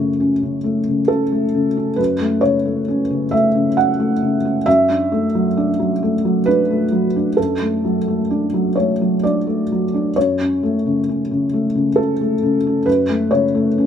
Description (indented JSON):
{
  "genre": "neoclassical minimalist piano",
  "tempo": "67 BPM",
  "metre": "3/4",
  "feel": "rubato",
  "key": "F# minor",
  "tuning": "A4 = 441 Hz",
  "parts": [
    { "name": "felt-muted upright piano", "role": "solo", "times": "0.0-13.9 s", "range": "F#2 to F#5", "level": "-15 LUFS", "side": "equal", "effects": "none" }
  ],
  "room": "light reverb",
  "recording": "none",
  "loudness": "-15 LUFS",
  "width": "side -8 dB against mid",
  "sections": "0.0-13.9 A section",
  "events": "none",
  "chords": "0.0 F#m; 4.7 Dadd9/F#; 10.2 F#m"
}